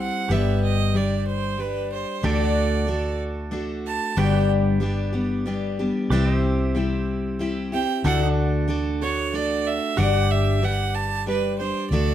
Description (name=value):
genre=country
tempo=93 BPM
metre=3/4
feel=straight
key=G major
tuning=A4 = 441 Hz
part: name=clear fiddle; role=second line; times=0.0-4.5, 7.7-12.1 s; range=B4 to A5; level=-26 LUFS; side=right 6 dB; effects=none
part: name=picked steel-string acoustic guitar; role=accompaniment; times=0.0-12.1 s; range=G2 to C5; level=-24 LUFS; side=left 3 dB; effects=none
part: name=pedal steel guitar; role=sustained chords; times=0.0-11.9 s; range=D4 to E5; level=-32 LUFS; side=right 6 dB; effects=none
part: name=vintage muted fingered electric bass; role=bass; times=0.0-12.1 s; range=G1 to D2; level=-25 LUFS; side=equal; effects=none
room=light reverb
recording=close, detailed microphones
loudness=-20 LUFS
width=side -11 dB against mid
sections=0.0-11.9 A section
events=fiddle solo 0.0-11.9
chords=0.3 G; 2.2 D; 4.2 G; 6.1 C; 8.0 D; 10.0 G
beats=| 0.30 0.94 1.59 | 2.23 2.88 3.53 | 4.17 4.82 5.46 | 6.11 6.75 7.40 | 8.04 8.69 9.33 | 9.98 10.62 11.27 | 11.91